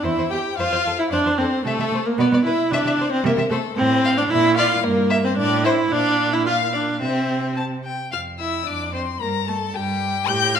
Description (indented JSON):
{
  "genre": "quick classical-period movement for string quartet",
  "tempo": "112 BPM",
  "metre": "2/4",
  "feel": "straight",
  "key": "F major",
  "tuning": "A4 = 440 Hz",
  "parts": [
    { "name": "warm violin", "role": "melody", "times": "0.0-10.6 s", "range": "A4 to G6", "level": "-24 LUFS", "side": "left 10 dB", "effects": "none" },
    { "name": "rich violin", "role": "second line", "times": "0.0-10.6 s", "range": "G4 to A5", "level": "-27 LUFS", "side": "left 3 dB", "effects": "none" },
    { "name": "rich viola", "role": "accompaniment", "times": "0.0-10.6 s", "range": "G3 to G4", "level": "-21 LUFS", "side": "right 2 dB", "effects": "none" },
    { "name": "rich cello", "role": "bass", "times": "0.0-10.6 s", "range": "E2 to C3", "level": "-26 LUFS", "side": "right 4 dB", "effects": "none" }
  ],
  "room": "wet recital hall reverb, RT60 1.4 s",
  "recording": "minimal, uncompressed stereo recording",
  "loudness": "-18 LUFS",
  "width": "side -8 dB against mid",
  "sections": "0.0-8.1 A section; 8.1-10.6 B section",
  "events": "none",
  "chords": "0.0 C/E (rootless); 0.6 F5; 1.7 N.C.; 2.2 Bsus4; 2.7 N.C.; 3.8 F/A; 4.3 Bb; 4.8 Edim/G; 5.4 Am; 5.9 Bb5; 7.0 C; 8.1 Dm9/F; 9.2 Gmadd9",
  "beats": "0.04 | 0.58 1.11 | 1.65 2.18 | 2.72 3.24 | 3.77 4.31 | 4.84 5.38 | 5.92 6.46 | 7.01 7.57 | 8.12 8.67 | 9.21 9.75 | 10.28"
}